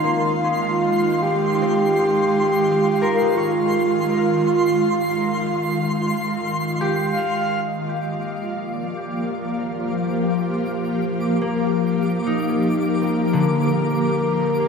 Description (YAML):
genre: ambient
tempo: 56 BPM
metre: 4/4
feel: straight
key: Eb major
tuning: A4 = 441 Hz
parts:
  - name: ethereal airy pad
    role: sustained chords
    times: 0.0-14.7 s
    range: Eb3 to F5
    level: -22 LUFS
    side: left 1 dB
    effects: ensemble chorus, built-in reverb, tremolo
  - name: concert harp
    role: arpeggios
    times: 0.0-14.7 s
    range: D3 to F6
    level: -27 LUFS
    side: left 2 dB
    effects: dub echo
  - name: analog drone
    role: drone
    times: 0.0-7.8 s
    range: Eb3 to F4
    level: -30 LUFS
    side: left 2 dB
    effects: none
  - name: twinkling granular texture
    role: texture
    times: 0.0-14.7 s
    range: C6 to D6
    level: -29 LUFS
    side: equal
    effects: built-in reverb
  - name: breathy flute-like synth lead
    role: melody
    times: 0.7-14.7 s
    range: F4 to F5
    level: -23 LUFS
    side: right 3 dB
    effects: chorus, dub echo
room: wet echo chamber reverb, RT60 2.3 s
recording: echo-heavy mix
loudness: -18 LUFS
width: side -5 dB against mid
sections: 0.0-7.7 A section; 7.7-14.7 B section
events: fade-in on synth texture 7.7-14.7; fade-in on soft synth lead 7.7-14.7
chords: 0.0 Dbmaj7/Eb; 7.7 Ebmaj9